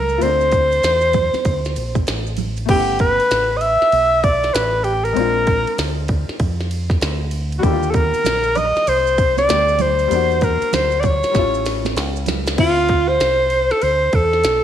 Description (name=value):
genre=hip hop, jazz-hop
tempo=97 BPM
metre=4/4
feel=swing 62% on 16ths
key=D minor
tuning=A4 = 439 Hz
part: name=breathy alto saxophone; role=melody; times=0.0-14.6 s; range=F4 to E5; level=-16 LUFS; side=equal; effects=slapback echo
part: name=clear upright piano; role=accompaniment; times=0.0-14.6 s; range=C#3 to F#5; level=-26 LUFS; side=left 11 dB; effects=none
part: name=deep dub fingered electric bass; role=bass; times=0.0-14.6 s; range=G1 to F2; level=-23 LUFS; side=right 1 dB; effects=none
part: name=maracas and congas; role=percussion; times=0.1-2.7, 7.6-12.6 s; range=none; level=-29 LUFS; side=right 15 dB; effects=none
part: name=glitchy drum kit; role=drums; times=0.2-14.6 s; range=crash cymbal, hi-hat, kick drum, ride cymbal, snare drum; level=-23 LUFS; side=right 1 dB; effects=none
room=light reverb, studio ambience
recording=1960s-style stereo with parts hard left and right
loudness=-15 LUFS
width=side -10 dB against mid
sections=0.0-2.7 A section; 2.7-12.6 B section; 12.6-14.6 A section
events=drum fill 11.3-12.6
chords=0.0 Dm9; 2.7 Gmaj9#11; 5.2 Bb9; 7.6 Ebmaj9#11; 10.1 Em7b5; 11.3 A7b13; 12.6 Dm9